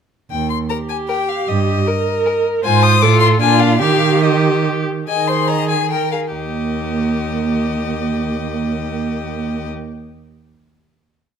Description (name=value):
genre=quick classical-period movement for string quartet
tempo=134-158 BPM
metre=3/4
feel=rubato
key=Eb major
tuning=A4 = 440 Hz
part: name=rich violin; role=melody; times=0.3-9.7 s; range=Eb5 to Eb6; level=-21 LUFS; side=left 12 dB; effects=none
part: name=clear cello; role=bass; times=0.3-9.7 s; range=Eb2 to Eb3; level=-19 LUFS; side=right 5 dB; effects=none
part: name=rich violin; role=second line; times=0.7-9.7 s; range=D4 to Eb5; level=-23 LUFS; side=left 4 dB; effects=none
part: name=rich viola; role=accompaniment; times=0.7-9.7 s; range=Bb3 to C5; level=-20 LUFS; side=right 2 dB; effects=none
room=light reverb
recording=close, detailed microphones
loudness=-15 LUFS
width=side -7 dB against mid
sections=0.3-5.1 A section; 5.1-6.3 coda; 6.3-8.9 final chord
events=slowing down 3.2-6.3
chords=0.3 Eb; 1.5 Eb/G; 2.6 Fm/Ab; 3.0 F/A; 3.4 Bb7; 3.8 Eb; 5.1 Ab/Eb; 5.7 Ebadd11; 6.3 Eb